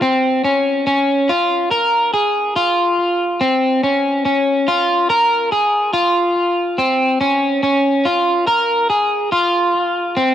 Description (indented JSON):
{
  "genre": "dream pop",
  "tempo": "71 BPM",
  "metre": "4/4",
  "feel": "straight",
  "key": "Db major",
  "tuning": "A4 = 439 Hz",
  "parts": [
    { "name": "electric guitar at the edge of break-up", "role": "solo", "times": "0.0-10.3 s", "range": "C4 to Bb4", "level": "-14 LUFS", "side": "equal", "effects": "wide subtle chorus, analog delay" }
  ],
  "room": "light reverb",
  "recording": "dry, gritty hardware recording",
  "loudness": "-14 LUFS",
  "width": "side -10 dB against mid",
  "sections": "0.0-10.3 A section",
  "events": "none",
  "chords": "none"
}